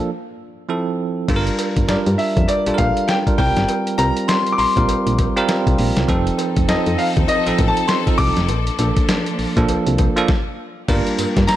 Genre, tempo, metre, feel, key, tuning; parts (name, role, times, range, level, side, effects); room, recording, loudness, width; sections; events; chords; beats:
R&B, new jack swing; 100 BPM; 4/4; swing 60% on 16ths; G minor; A4 = 439 Hz
bell-like tine electric piano; accompaniment; 0.0-11.6 s; F3 to Bb4; -21 LUFS; right 3 dB; fast stereo tremolo
solid FM bass; bass; 1.3-11.5 s; F1 to G2; -21 LUFS; left 1 dB
boom bap sampler-style drum kit; drums; 1.3-11.6 s; crash cymbal, hi-hat, kick drum, snare drum, tambourine; -20 LUFS; equal
cowbell; percussion; 1.3-11.6 s; -32 LUFS; left 10 dB
clear concert grand piano; melody; 1.9-11.6 s; D5 to D6; -21 LUFS; left 2 dB; ping-pong delay
clear studio string section; sustained chords; 6.1-11.6 s; F3 to A4; -28 LUFS; left 3 dB
light reverb; -16 LUFS; side -13 dB against mid
0.0-1.3 A section; 1.3-10.9 B section
break 0.1-1.3; stop 10.3-10.9
0.1 Fmaj7; 1.3 Gm7; 3.4 C7sus4; 6.1 F7; 8.5 Bbmaj7; 10.9 Gm7
0.09 0.69 | 1.28 1.89 2.48 3.08 | 3.69 4.29 4.88 5.49 | 6.08 6.68 7.29 7.88 | 8.48 9.09 9.69 10.29 | 10.88 11.48